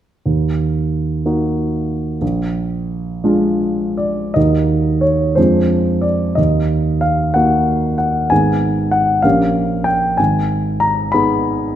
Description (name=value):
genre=classical, romantic character piece for solo piano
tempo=50-65 BPM (dotted quarters)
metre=6/8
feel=rubato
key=Eb minor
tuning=A4 = 440 Hz
part: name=warm grand piano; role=solo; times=0.3-11.8 s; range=Ab1 to Cb6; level=-14 LUFS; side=equal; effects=none
room=moderate recital hall reverb, RT60 1.3 s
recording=none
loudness=-14 LUFS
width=side -11 dB against mid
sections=0.3-4.4 A section; 4.4-11.8 B section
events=none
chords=0.3 Ebm; 2.2 Bb7; 4.4 Ebm; 5.4 Ddim/F; 6.4 Ebm; 8.3 Abm; 9.2 Gdim/Bb; 10.2 Abm